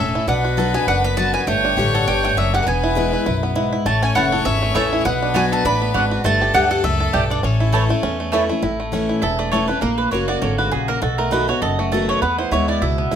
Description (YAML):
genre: bluegrass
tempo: 201 BPM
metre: 4/4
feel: swing 56% on 8ths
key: A major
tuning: A4 = 440 Hz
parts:
  - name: mandolin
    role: melody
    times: 0.0-8.3 s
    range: C#5 to B5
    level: -21 LUFS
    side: equal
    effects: none
  - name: clear fiddle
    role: second line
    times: 0.0-8.5 s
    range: A4 to C#5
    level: -26 LUFS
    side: left 5 dB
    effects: none
  - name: picked steel-string acoustic guitar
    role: accompaniment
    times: 0.0-13.2 s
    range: E2 to G4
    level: -22 LUFS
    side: left 3 dB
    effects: none
  - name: bluegrass banjo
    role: arpeggios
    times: 0.0-13.2 s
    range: A3 to A4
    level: -23 LUFS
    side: right 3 dB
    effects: none
  - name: upright bass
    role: bass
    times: 0.0-13.2 s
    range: E1 to E2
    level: -23 LUFS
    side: equal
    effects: none
  - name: mandolin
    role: stabs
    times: 4.2-13.2 s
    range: A3 to A5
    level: -22 LUFS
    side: right 3 dB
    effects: none
room: moderate studio reverb, RT60 0.7 s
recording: none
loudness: -16 LUFS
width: side -8 dB against mid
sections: 0.0-8.6 A section; 8.6-13.2 B section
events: mandolin solo 8.6-13.2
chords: 0.3 Bm; 1.5 Gsus2; 2.7 E; 3.9 A; 5.0 Bm; 6.2 Gsus2; 7.4 A; 9.8 F#; 11.0 B7; 12.2 E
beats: | 0.28 0.58 0.88 1.17 | 1.47 1.77 2.07 2.37 | 2.67 2.96 3.26 3.56 | 3.86 4.16 4.45 4.75 | 5.05 5.35 5.64 5.94 | 6.24 6.54 6.84 7.14 | 7.43 7.73 8.03 8.33 | 8.63 8.93 9.22 9.52 | 9.82 10.12 10.42 10.72 | 11.02 11.32 11.62 11.92 | 12.22 12.52 12.82 13.12